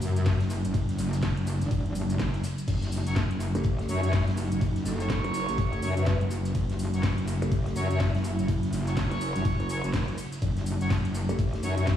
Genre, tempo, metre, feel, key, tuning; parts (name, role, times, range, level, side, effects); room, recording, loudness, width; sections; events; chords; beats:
bass house; 124 BPM; 4/4; swing 60% on 16ths; F# dorian; A4 = 441 Hz
sweeping resonant pad; sustained chords; 0.0-12.0 s; C#3 to E4; -35 LUFS; right 2 dB; chorus, sidechain pumping
metallic wobble bass; bass; 0.0-11.3 s; E1 to F#2; -28 LUFS; left 1 dB; distortion, chorus, tube saturation, sidechain pumping
garage drum kit; drums; 0.0-12.0 s; cabasa, crash cymbal, hi-hat, ride cymbal, snare drum; -36 LUFS; equal
loose indie drum kit; drums; 0.0-12.0 s; hi-hat, snare drum; -50 LUFS; right 2 dB
electronic kick drum; drums; 0.3-12.0 s; -28 LUFS; left 1 dB
clear horn section; stabs; 3.1-11.8 s; F#3 to C#5; -36 LUFS; right 1 dB; sidechain pumping, digital delay
growl bass; bass; 3.5-12.0 s; F#1 to F#2; -28 LUFS; left 1 dB; chorus, sidechain pumping
vibraphone with medium mallets; melody; 4.9-6.2 s; A4 to B4; -41 LUFS; right 3 dB; digital delay
small room ambience; played on a big sound system in a bare room, large studio reverb, studio ambience; -25 LUFS; side -10 dB against mid
0.0-12.0 A section
0.0 F#5
0.26 | 0.74 1.23 1.71 2.19 | 2.68 3.16 3.65 4.13 | 4.61 5.10 5.58 6.07 | 6.55 7.03 7.52 8.00 | 8.48 8.97 9.45 9.94 | 10.42 10.90 11.39 11.87